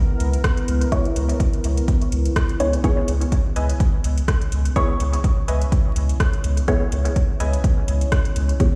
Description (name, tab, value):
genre	dub techno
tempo	125 BPM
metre	4/4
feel	swing 55% on 16ths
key	C# dorian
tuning	A4 = 442 Hz
part	deep dark ambient pad	sustained chords	0.0-8.8 s	B3 to C#5	-32 LUFS	equal	chorus, built-in reverb, sidechain pumping
part	soft dub sub bass	bass	0.2-8.5 s	C#2	-22 LUFS	equal	sidechain pumping
part	soft vintage rhythm box	drums	0.2-8.7 s	hi-hat, rim click	-33 LUFS	equal	dub echo
part	electronic kick drum	drums	0.4-8.7 s	none	-21 LUFS	equal	none
part	filtered dub chord stab	stabs	0.9-8.8 s	B3 to C#5	-28 LUFS	equal	phaser, sidechain pumping, dub echo
part	filtered dub chord stab	riff	3.6-7.5 s	B4 to G#5	-35 LUFS	equal	chorus, sidechain pumping, dub echo
room	light reverb, digital ambience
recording	played on a big sound system in a bare room, large studio reverb, vinyl crackle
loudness	-20 LUFS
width	mono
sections	0.0-8.8 A section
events	filter sweep on synth stab 0.0-8.8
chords	0.0 C#m7